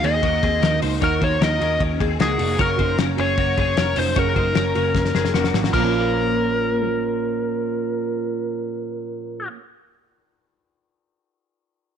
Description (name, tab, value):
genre	jangly indie pop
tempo	153 BPM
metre	4/4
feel	straight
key	Bb minor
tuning	A4 = 440 Hz
part	nasal lead guitar with a parked wah	melody	0.0-9.5 s	Ab4 to Eb5	-23 LUFS	left 3 dB	overdrive, slapback echo
part	fingerpicked plugged-in steel-string acoustic guitar	accompaniment	0.0-9.7 s	Gb2 to Gb4	-25 LUFS	right 12 dB	none
part	twelve-string electric guitar	arpeggios	0.0-6.9 s	Bb3 to Db5	-27 LUFS	left 12 dB	ensemble chorus, slapback echo
part	vintage muted picked electric bass	bass	0.0-9.5 s	F1 to Eb2	-25 LUFS	right 1 dB	none
part	cloth-damped thuddy drum kit	drums	0.0-5.8 s	crash cymbal, hi-hat, kick drum, ride cymbal, snare drum	-24 LUFS	left 3 dB	none
room	light reverb, studio reverb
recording	1960s-style stereo with parts hard left and right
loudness	-18 LUFS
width	side -8 dB against mid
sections	0.0-5.7 A section; 5.7-8.9 B section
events	drum fill 4.9-5.7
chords	0.0 Ab; 5.7 Bbm